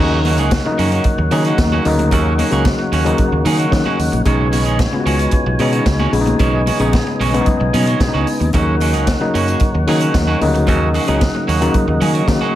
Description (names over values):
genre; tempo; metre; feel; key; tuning
disco; 112 BPM; 4/4; straight; Eb minor; A4 = 441 Hz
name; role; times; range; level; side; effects
electric guitar at the edge of break-up; accompaniment; 0.0-12.5 s; Eb3 to Ab4; -22 LUFS; right 6 dB; none
overdriven reed electric piano; accompaniment; 0.0-12.6 s; Db3 to Gb5; -18 LUFS; left 3 dB; none
tonewheel organ; sustained chords; 0.0-12.6 s; Eb4 to G#5; -23 LUFS; equal; overdrive, slow rotary speaker
fingered electric bass; bass; 0.0-12.4 s; Bb1 to Eb3; -18 LUFS; equal; none
congas; percussion; 0.2-12.5 s; none; -25 LUFS; left 4 dB; none
vintage drum kit; drums; 0.3-12.4 s; hi-hat, kick drum, snare drum; -20 LUFS; right 1 dB; none
room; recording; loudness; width
moderate large studio reverb, RT60 0.9 s, studio reverb; none; -13 LUFS; side -13 dB against mid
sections
0.0-12.6 A section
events
reed electric piano fill 3.2-4.3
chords
0.0 Ebm7; 4.3 B69; 8.5 Ebm7